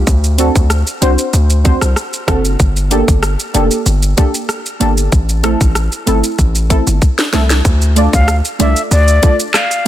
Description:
dancehall; 95 BPM; 4/4; straight; D minor; A4 = 441 Hz
hard-hitting 808-style bass; bass; 0.0-9.2 s; F1 to D2; -13 LUFS; equal
island pop drum kit; drums; 0.1-9.8 s; handclaps, hi-hat, kick drum, rim click, shaker, snare drum; -14 LUFS; equal
deep mellow chord stab; accompaniment; 0.4-9.9 s; A3 to D5; -17 LUFS; right 1 dB; chorus, sidechain pumping
breathy mellow jazz flute; melody; 8.1-9.9 s; D5 to F5; -16 LUFS; left 2 dB; ping-pong delay
little or no reverb; dense, heavily limited modern master; -10 LUFS; side -12 dB against mid
0.0-7.7 A section; 7.7-9.9 B section
drum fill 6.4-7.7
0.1 D7; 2.6 Gmadd9; 5.1 Am; 7.7 Dm
| 0.07 0.70 1.33 1.97 | 2.60 3.23 3.86 4.49 | 5.12 5.75 6.39 7.02 | 7.65 8.28 8.91 9.54

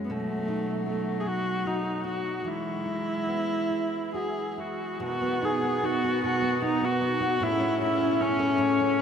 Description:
celtic folk, Celtic slow air; 68-79 BPM; 3/4; rubato; A4 = 441 Hz
rich viola; melody; 0.0-9.0 s; A3 to G#4; -27 LUFS; equal
warm cello; second line; 0.0-9.0 s; F#3 to C#4; -32 LUFS; left 2 dB
nylon-string guitar; accompaniment; 0.0-9.0 s; F#2 to A4; -32 LUFS; right 1 dB
pedal harmonium; sustained chords; 5.0-9.0 s; C#3 to F#4; -37 LUFS; right 1 dB
wet cathedral reverb, RT60 6.4 s; recorded in a church or concert hall; -25 LUFS; side -7 dB against mid
0.0-5.0 A section; 5.0-9.0 B section
0.1 B7; 2.5 Eadd9; 5.0 B; 7.4 A
| 0.11 0.88 1.66 | 2.46 3.27 4.13 | 5.00 5.84 6.64 | 7.42 8.21 9.00

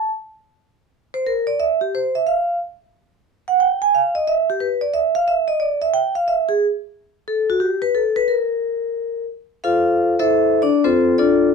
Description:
jazz; 179 BPM; 4/4; swing 65% on 8ths; A4 = 436 Hz
vibraphone with medium mallets; solo; 0.0-11.5 s; C4 to Ab5; -16 LUFS; equal
light reverb; close, detailed microphones; -17 LUFS; side -5 dB against mid
0.0-6.9 A section; 6.9-11.5 B section
0.0 N.C.; 9.6 Fmaj7; 10.9 Dm7
| 0.23 0.57 0.90 1.24 | 1.57 1.91 2.24 2.58 | 2.91 3.25 3.58 3.92 | 4.25 4.58 4.92 5.25 | 5.59 5.92 6.26 6.59 | 6.93 7.26 7.60 7.93 | 8.27 8.60 8.93 9.27 | 9.60 9.94 10.27 10.61 | 10.94 11.27

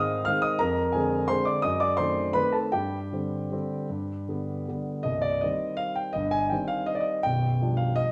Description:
classical, piano waltz; 150-182 BPM; 3/4; rubato; C minor; A4 = 440 Hz
dark concert grand piano; solo; 0.0-8.1 s; B0 to F6; -27 LUFS; equal
wet recital hall reverb, RT60 1.4 s; worn, warbling old tape, cassette tape, warbly pitch drift; -27 LUFS; mono
0.0-5.1 A section; 5.1-8.1 B section
0.0 Ab; 0.6 Dm7b5/F; 1.6 F#dim7; 2.7 Gsus4; 3.9 G; 5.1 Cm; 7.3 G7/B
0.27 | 0.61 0.95 1.30 | 1.65 2.00 2.37 | 2.74 3.14 3.53 | 3.92 4.30 4.69 | 5.07 5.44 5.81 | 6.16 6.52 6.89 | 7.25 7.61 7.98

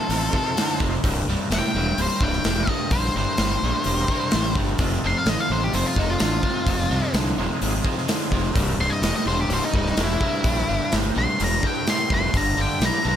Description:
blues rock power trio and southern rock; 127 BPM; 4/4; straight; C mixolydian; A4 = 441 Hz
octave-fuzz lead guitar; melody; 0.0-13.2 s; Eb4 to C6; -25 LUFS; left 2 dB; distortion
overdriven tonewheel organ; sustained chords; 0.0-13.2 s; C4 to C5; -34 LUFS; right 3 dB; slow rotary speaker, chorus vibrato
overdriven electric guitar; riff; 0.0-13.2 s; C2 to E3; -26 LUFS; equal
fuzz fingered electric bass; bass; 0.1-13.2 s; C1 to C2; -26 LUFS; equal; overdrive
big rock drum kit; drums; 0.1-12.9 s; hi-hat, kick drum, snare drum; -25 LUFS; equal
studio reverb; -20 LUFS; side -10 dB against mid
0.0-13.2 A section
0.0 F7; 1.0 C7; 4.8 F7; 6.7 Fm7; 8.6 C7; 12.3 G7
0.09 0.56 | 1.03 1.50 1.97 2.44 | 2.91 3.38 3.85 4.32 | 4.79 5.26 5.74 6.21 | 6.68 7.15 7.62 8.09 | 8.56 9.03 9.51 9.98 | 10.45 10.92 11.39 11.87 | 12.34 12.81

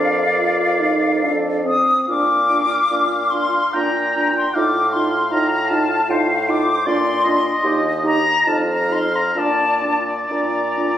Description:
classical, slow romantic movement for wind quintet; 62-80 BPM; 3/4; rubato; Bb major; A4 = 440 Hz
bright concert flute; melody; 0.0-11.0 s; F5 to Eb6; -19 LUFS; left 2 dB
clear oboe; second line; 0.0-11.0 s; C5 to G5; -24 LUFS; left 1 dB
dark clarinet; accompaniment; 0.0-10.9 s; F4 to Bb4; -27 LUFS; right 4 dB
warm French horn; accompaniment; 0.0-10.9 s; C4 to F4; -24 LUFS; right 1 dB
warm bassoon; bass; 0.0-11.0 s; Eb2 to Bb2; -23 LUFS; right 1 dB
moderate concert hall reverb, RT60 2.2 s; recorded on a phone in the room, studio reverb, compression; -16 LUFS; side -11 dB against mid
0.0-11.0 A section
0.0 Bb/F; 1.2 F; 2.1 Bb; 4.6 F7/A; 6.9 Bb; 7.6 Cm/Eb (rootless); 8.5 F7; 9.4 Bb
0.38 1.23 | 2.09 2.91 3.74 | 4.56 5.32 6.10 | 6.87 7.64 8.47 | 9.37 10.31

